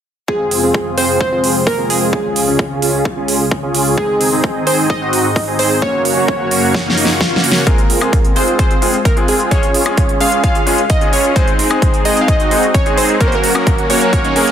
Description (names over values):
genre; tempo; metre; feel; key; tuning
EDM, festival progressive house; 130 BPM; 4/4; straight; unclear; A4 = 440 Hz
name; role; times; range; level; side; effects
plucky unison lead; melody; 0.3-14.5 s; Ab4 to F5; -18 LUFS; equal; dub echo
lush unison pad; sustained chords; 0.3-14.5 s; Db2 to Eb5; -22 LUFS; equal; chorus, sidechain pumping
supersaw chords; riff; 0.3-14.5 s; Bb3 to Ab4; -18 LUFS; right 1 dB; sidechain pumping, low-pass filter, dub echo
electronic kick drum; drums; 0.3-14.2 s; none; -16 LUFS; equal; overdrive, high-pass filter on kick, studio reverb
big-room dance drum kit; drums; 0.5-14.5 s; hi-hat, snare drum, woodblock; -18 LUFS; right 3 dB; high-pass filter on hats, studio reverb, high-pass filter on snare, high-pass filter on perc
swell; sound effects; 6.9-7.7 s; none; -24 LUFS; left 6 dB; none
bright grand piano; accompaniment; 7.7-14.5 s; Ab3 to Bb4; -20 LUFS; left 4 dB; sidechain pumping
fat analog bass; bass; 7.7-14.5 s; F1 to Ab2; -31 LUFS; equal; none
room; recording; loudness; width
light reverb; dense, heavily limited modern master; -11 LUFS; side -9 dB against mid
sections
0.3-7.7 A section; 7.7-14.5 B section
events
filter sweep on analog synth pad 0.3-7.7; drum fill 6.7-7.7; swell 6.9-7.7; build-up 7.7-14.5; filter sweep on supersaw synth 7.7-14.5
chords
0.3 Fm; 2.1 Db; 4.0 Ab; 5.8 Gb; 7.7 Fm; 9.5 Db; 11.4 Ab; 13.2 Gb